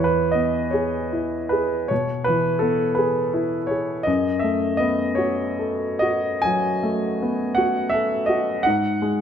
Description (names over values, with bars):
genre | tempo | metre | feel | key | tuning
classical, romantic nocturne for solo piano | 46-57 BPM (dotted quarters) | 12/8 | rubato | unclear | A4 = 440 Hz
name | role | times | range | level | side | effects
warm grand piano | solo | 0.0-9.2 s | E2 to G#5 | -20 LUFS | equal | none
room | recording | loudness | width
moderate recital hall reverb, RT60 1.6 s | close, detailed microphones | -20 LUFS | side -8 dB against mid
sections
0.0-9.2 A section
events
none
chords
0.0 E; 4.1 B5/F#; 8.7 N.C.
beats
0.74 1.90 2.98 | 4.08 5.18 6.44 7.58 | 8.65